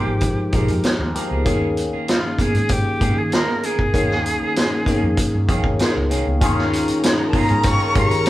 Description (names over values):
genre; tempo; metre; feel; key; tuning
lush 1970s-style soul; 97 BPM; 4/4; straight; unclear; A4 = 440 Hz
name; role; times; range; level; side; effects
bright reedy jazz flute; melody; 0.0-8.3 s; F4 to Db6; -24 LUFS; equal; none
barky tine electric piano; accompaniment; 0.0-8.3 s; Eb3 to Bb5; -22 LUFS; left 1 dB; overdrive, phaser
electric guitar at the edge of break-up; riff; 0.0-8.3 s; Bb3 to Bb4; -31 LUFS; right 3 dB; none
vintage muted fingered electric bass; bass; 0.1-8.3 s; Ab1 to Eb3; -24 LUFS; equal; none
congas; percussion; 0.1-7.8 s; none; -33 LUFS; right 1 dB; none
vintage drum kit; drums; 0.2-8.3 s; hi-hat, kick drum, snare drum; -20 LUFS; equal; none
warm symphonic violin section; second line; 6.4-8.3 s; Bb4 to Bb5; -28 LUFS; left 2 dB; none
warm horn section; stabs; 6.4-8.3 s; Ab3 to F4; -29 LUFS; left 3 dB; none
room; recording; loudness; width
moderate large studio reverb, RT60 0.9 s; band playing live in one room; -16 LUFS; side -15 dB against mid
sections
0.0-6.4 A section; 6.4-8.3 B section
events
tine electric piano fill 0.5-1.5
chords
0.0 Fm11; 1.5 Eb7sus4; 6.4 Eb9sus4